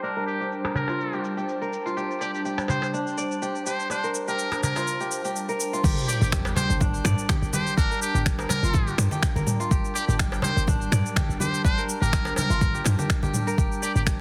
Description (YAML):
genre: afro house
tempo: 124 BPM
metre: 4/4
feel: swing 54% on 16ths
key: G minor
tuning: A4 = 440 Hz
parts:
  - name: trumpet with metal mute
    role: melody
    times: 0.0-14.0 s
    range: G4 to C5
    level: -33 LUFS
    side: equal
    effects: vintage 12-bit sampler grit, digital delay
  - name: ethereal airy pad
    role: sustained chords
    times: 0.0-14.2 s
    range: G3 to A5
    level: -36 LUFS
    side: equal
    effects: ensemble chorus, built-in reverb, sidechain pumping
  - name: kora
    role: arpeggios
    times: 0.0-14.2 s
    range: D4 to D5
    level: -33 LUFS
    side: equal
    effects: sidechain pumping, digital delay
  - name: afro-pop drum kit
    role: drums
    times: 0.0-14.2 s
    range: cabasa, crash cymbal, finger snaps, toms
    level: -32 LUFS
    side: equal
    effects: none
  - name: darbuka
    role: percussion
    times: 0.6-13.0 s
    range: none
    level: -33 LUFS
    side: equal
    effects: none
  - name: warm 808-style bass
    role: bass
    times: 5.8-14.2 s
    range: G1 to G2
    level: -28 LUFS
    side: equal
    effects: sidechain pumping
  - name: electronic kick drum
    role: drums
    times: 5.8-14.2 s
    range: none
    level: -27 LUFS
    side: equal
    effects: none
  - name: congas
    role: percussion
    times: 5.8-14.2 s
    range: none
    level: -34 LUFS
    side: equal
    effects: none
  - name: sub drop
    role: sound effects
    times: 5.8-7.8 s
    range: none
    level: -34 LUFS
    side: equal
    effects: none
room: light reverb, small room ambience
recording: heavily compressed radio sound, low-pass filter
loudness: -25 LUFS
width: mono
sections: 0.0-5.8 A section; 5.8-14.2 B section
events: filter sweep on kora 0.0-5.8; filter sweep 0.0-5.8; drop 5.8-14.2; impact 5.8-7.8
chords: 0.0 Gm7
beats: | 0.03 0.52 1.00 1.49 | 1.97 2.45 2.94 3.42 | 3.90 4.39 4.87 5.36 | 5.84 6.32 6.81 7.29 | 7.78 8.26 8.74 9.23 | 9.71 10.20 10.68 11.16 | 11.65 12.13 12.61 13.10 | 13.58 14.07